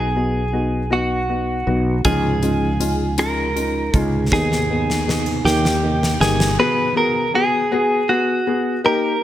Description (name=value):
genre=six-eight pop ballad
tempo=53 BPM (dotted quarters)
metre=6/8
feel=straight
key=unclear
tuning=A4 = 441 Hz
part: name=direct-recorded clean electric guitar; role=melody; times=0.0-9.2 s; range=F#4 to B4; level=-20 LUFS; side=right 1 dB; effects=none
part: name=dark upright piano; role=accompaniment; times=0.0-9.1 s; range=A#3 to G#4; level=-22 LUFS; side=left 3 dB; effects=none
part: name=sustaining fretless electric bass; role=bass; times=0.0-6.6 s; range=G1 to D#2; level=-22 LUFS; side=equal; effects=none
part: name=fingerpicked steel-string acoustic guitar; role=arpeggios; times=2.0-7.2 s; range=D#3 to G#4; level=-29 LUFS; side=right 6 dB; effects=none
part: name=huge arena drum kit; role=drums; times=2.0-6.6 s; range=hi-hat, kick drum, rim click, snare drum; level=-24 LUFS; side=equal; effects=none
room=light reverb, studio reverb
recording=none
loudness=-16 LUFS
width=side -12 dB against mid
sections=0.0-6.6 A section; 6.6-9.2 B section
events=drum fill 4.3-6.6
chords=0.0 B; 2.0 C#add9; 4.3 G#m/D#; 5.4 D#; 6.6 G#m7